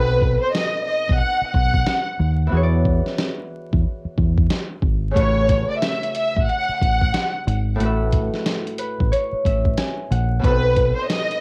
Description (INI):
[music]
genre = hip hop, boom-bap hip-hop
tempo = 91 BPM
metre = 4/4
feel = swing 63% on 16ths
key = A major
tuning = A4 = 440 Hz
[part]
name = warm studio violin section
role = melody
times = 0.0-11.4 s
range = B4 to F#5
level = -23 LUFS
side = equal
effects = high-pass filter, low-pass filter, cassette tape, analog delay
[part]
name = Celtic harp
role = accompaniment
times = 0.0-11.4 s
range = A2 to G#5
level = -29 LUFS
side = equal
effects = cassette tape, high-pass filter, low-pass filter
[part]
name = deep dub fingered electric bass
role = bass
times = 0.0-10.9 s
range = G#1 to E2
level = -23 LUFS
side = equal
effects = tube saturation
[part]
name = boom bap sampler-style drum kit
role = drums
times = 0.2-11.4 s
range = hi-hat, kick drum, snare drum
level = -24 LUFS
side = equal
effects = cassette tape
[sound]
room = light reverb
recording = home recording on cassette, vinyl crackle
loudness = -20 LUFS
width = mono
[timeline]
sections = 0.0-11.4 A section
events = break 0.0-5.2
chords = 0.0 B7b9; 2.5 E9; 5.2 A6; 10.4 B7b9